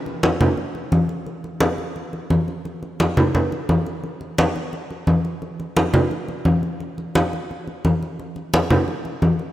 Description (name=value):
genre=latin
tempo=174 BPM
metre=4/4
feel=straight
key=none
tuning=none
part: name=congas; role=percussion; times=0.1-9.5 s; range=none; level=-19 LUFS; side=equal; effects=none
room=moderate lush hall reverb, RT60 2.9 s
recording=rough home demo mix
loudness=-19 LUFS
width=side -14 dB against mid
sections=0.0-5.4 A section; 5.4-9.5 B section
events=none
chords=none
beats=0.23 0.58 0.93 | 1.27 1.62 1.96 2.31 | 2.65 3.00 3.35 3.69 | 4.04 4.38 4.73 5.07 | 5.42 5.76 6.11 6.45 | 6.80 7.14 7.49 7.84 | 8.18 8.53 8.87 9.22